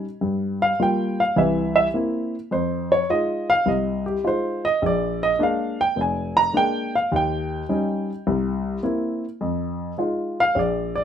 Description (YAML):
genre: solo jazz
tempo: 104 BPM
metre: 4/4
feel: swing 67% on 8ths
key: unclear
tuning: A4 = 440 Hz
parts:
  - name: dark baby grand piano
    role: solo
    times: 0.0-11.0 s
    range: F1 to Bb5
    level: -20 LUFS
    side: equal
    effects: none
room: light reverb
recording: minimal, uncompressed stereo recording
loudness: -20 LUFS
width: side -8 dB against mid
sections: 0.0-11.0 A section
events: grand piano solo 0.0-11.0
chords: 0.2 Gm7; 1.4 C7; 2.5 Fm7; 4.8 Bb7; 7.1 Eb7; 8.3 C7; 9.4 Fm7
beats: | 0.21 0.79 1.36 1.93 | 2.51 3.08 3.66 4.23 | 4.81 5.38 5.96 6.54 | 7.11 7.69 8.26 8.84 | 9.41 9.99 10.56